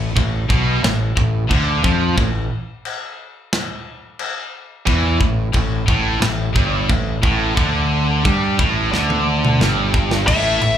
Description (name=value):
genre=heavy metal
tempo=89 BPM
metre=4/4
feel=straight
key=unclear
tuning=A4 = 440 Hz
part: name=heavy high-gain guitar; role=riff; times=0.0-10.8 s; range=G2 to G3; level=-21 LUFS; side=right 9 dB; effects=distortion, slapback echo
part: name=scooped high-gain guitar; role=riff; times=0.0-10.8 s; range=G2 to G3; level=-22 LUFS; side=left 9 dB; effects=distortion, slapback echo
part: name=growling fingered electric bass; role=bass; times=0.0-10.8 s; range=G1 to G2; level=-21 LUFS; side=left 1 dB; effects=overdrive
part: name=tight metal drum kit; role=drums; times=0.2-10.8 s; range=china cymbal, crash cymbal, kick drum, snare drum, toms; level=-20 LUFS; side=equal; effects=none
part: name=nasal lead guitar with a parked wah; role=melody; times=10.3-10.8 s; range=E5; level=-17 LUFS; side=left 3 dB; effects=overdrive
room=little or no reverb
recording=live gig heard through the venue's PA, club reverb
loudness=-15 LUFS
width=side -10 dB against mid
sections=0.0-10.3 A section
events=half time 0.0-10.3; drum fill 8.9-10.3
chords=0.0 A5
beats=0.17 0.84 1.51 | 2.18 2.85 3.52 4.20 | 4.87 5.54 6.22 6.89 | 7.57 8.24 8.92 9.60 | 10.27